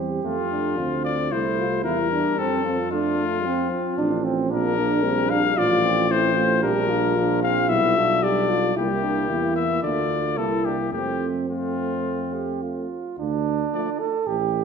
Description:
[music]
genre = classical, brass quintet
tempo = 112 BPM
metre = 4/4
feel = rubato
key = F major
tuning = A4 = 444 Hz
[part]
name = mellow flugelhorn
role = second line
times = 0.0-14.6 s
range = B3 to A4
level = -28 LUFS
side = right 9 dB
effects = none
[part]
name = mellow trombone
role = accompaniment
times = 0.0-13.9 s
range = F3 to Bb3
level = -30 LUFS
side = right 4 dB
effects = none
[part]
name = warm French horn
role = accompaniment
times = 0.0-13.9 s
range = A3 to G4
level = -26 LUFS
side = left 3 dB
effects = none
[part]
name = warm tuba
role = bass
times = 0.0-14.6 s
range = A1 to F2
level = -28 LUFS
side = right 4 dB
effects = none
[part]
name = warm trumpet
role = melody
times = 0.2-13.9 s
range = F4 to F5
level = -24 LUFS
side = left 7 dB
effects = none
[sound]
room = wet recital hall reverb, RT60 1.3 s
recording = none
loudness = -20 LUFS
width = side -6 dB against mid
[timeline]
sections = 0.0-13.2 A section; 13.2-14.6 B section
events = none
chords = 0.2 F; 1.3 C7; 2.4 F; 4.5 Bb; 5.6 F/A; 6.6 Gm7/Bb; 7.7 G/B; 8.8 C7; 9.8 Dm; 10.4 C7; 10.9 F; 13.2 D5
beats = | 0.24 0.78 1.32 1.85 | 2.38 2.92 3.45 3.98 | 4.51 5.04 5.57 6.10 | 6.63 7.16 7.69 8.23 | 8.77 9.30 9.83 10.37 | 10.93 11.49 12.06 12.62 | 13.18 13.73 14.27

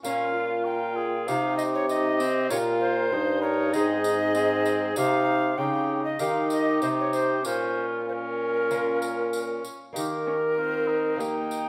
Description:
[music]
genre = classical, renaissance-style consort dance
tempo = 97 BPM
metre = 4/4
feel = straight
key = unclear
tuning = A4 = 440 Hz
[part]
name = alto recorder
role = melody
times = 0.0-11.7 s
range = Bb4 to G5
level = -31 LUFS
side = equal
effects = none
[part]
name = mellow cor anglais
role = second line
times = 0.0-11.7 s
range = Eb4 to C5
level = -34 LUFS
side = equal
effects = none
[part]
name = lute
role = accompaniment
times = 0.0-11.7 s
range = G2 to Ab4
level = -35 LUFS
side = equal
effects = none
[part]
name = warm viola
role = accompaniment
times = 0.0-11.7 s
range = Bb3 to F4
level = -34 LUFS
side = equal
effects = none
[part]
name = mellow bassoon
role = bass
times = 0.0-11.7 s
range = G2 to Eb3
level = -31 LUFS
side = equal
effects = none
[part]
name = tambourine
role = percussion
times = 0.0-11.7 s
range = none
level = -45 LUFS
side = equal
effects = none
[sound]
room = moderate recital hall reverb, RT60 1.3 s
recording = none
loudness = -26 LUFS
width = mono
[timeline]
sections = 0.0-10.0 A section; 10.0-11.7 B section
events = none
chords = 0.0 Bbm; 1.3 Cm; 2.5 Eb/Bb; 3.7 Ab; 5.0 Cm; 6.2 Eb; 7.4 Bbm; 10.0 Eb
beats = | 0.04 0.66 1.28 1.89 | 2.51 3.12 3.73 4.35 | 4.96 5.58 6.19 6.82 | 7.45 8.08 8.71 9.34 | 9.96 10.58 11.20

